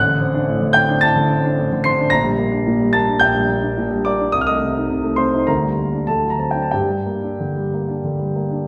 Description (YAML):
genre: classical, romantic character piece for solo piano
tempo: 89-113 BPM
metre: 4/4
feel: rubato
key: G minor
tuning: A4 = 440 Hz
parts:
  - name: warm grand piano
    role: solo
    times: 0.0-8.7 s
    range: A1 to C7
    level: -18 LUFS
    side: equal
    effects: none
room: wet recital hall reverb, RT60 1.6 s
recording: recorded in a church or concert hall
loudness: -18 LUFS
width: mono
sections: 0.0-8.7 A section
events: none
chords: 0.0 D7/A; 2.1 Gm/Bb; 4.3 Adim/C; 5.5 Gm/D; 6.1 D7; 6.7 Gm